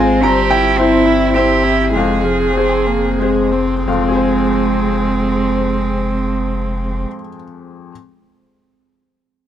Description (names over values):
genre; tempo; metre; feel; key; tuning
neoclassical piano and strings; 89-112 BPM; 3/4; rubato; F harmonic minor; A4 = 440 Hz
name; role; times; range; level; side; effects
rich cello; second line; 0.0-7.1 s; Ab3 to Ab4; -18 LUFS; right 3 dB; none
bright upright piano; accompaniment; 0.0-7.9 s; F2 to Bb5; -18 LUFS; left 4 dB; none
rich viola; accompaniment; 0.0-7.0 s; F3 to E4; -21 LUFS; right 2 dB; none
warbly tape-like pad; sustained chords; 0.0-7.1 s; C4 to C5; -22 LUFS; right 2 dB; chorus, built-in reverb
pure sine sub bass; bass; 0.0-7.1 s; F1 to Ab1; -22 LUFS; equal; none
room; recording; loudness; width
light reverb; none; -13 LUFS; side -10 dB against mid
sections
0.0-3.9 A section; 3.9-7.9 B section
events
slowing down 0.0-3.9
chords
0.2 C/G; 1.9 Fm